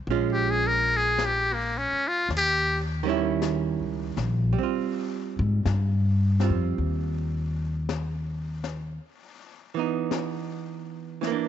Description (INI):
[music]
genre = jazz ballad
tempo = 54 BPM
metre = 4/4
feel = swing 66% on 8ths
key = Ab major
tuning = A4 = 440 Hz
[part]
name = archtop guitar, miked and amplified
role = accompaniment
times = 0.0-11.5 s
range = Eb3 to F4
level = -29 LUFS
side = right 11 dB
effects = none
[part]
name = upright bass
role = bass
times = 0.0-9.0 s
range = Bb1 to Ab2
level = -26 LUFS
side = left 1 dB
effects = none
[part]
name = jazz brush drum kit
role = drums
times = 0.1-11.5 s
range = brushed snare drum, hi-hat, snare drum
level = -38 LUFS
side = left 9 dB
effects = none
[part]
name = trumpet with metal mute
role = melody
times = 0.3-2.8 s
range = Bb3 to Bb4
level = -24 LUFS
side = left 2 dB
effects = none
[sound]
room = light reverb, studio ambience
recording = 1960s-style stereo with parts hard left and right, nothing above 7.9 kHz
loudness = -24 LUFS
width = side -10 dB against mid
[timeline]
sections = 0.0-4.6 A section; 4.6-11.5 A section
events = muted trumpet solo 0.0-4.6; upright bass solo 4.6-11.5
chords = 0.1 Bbm7; 2.3 Eb7b9; 4.6 Ab6 (rootless); 9.0 Badd11/E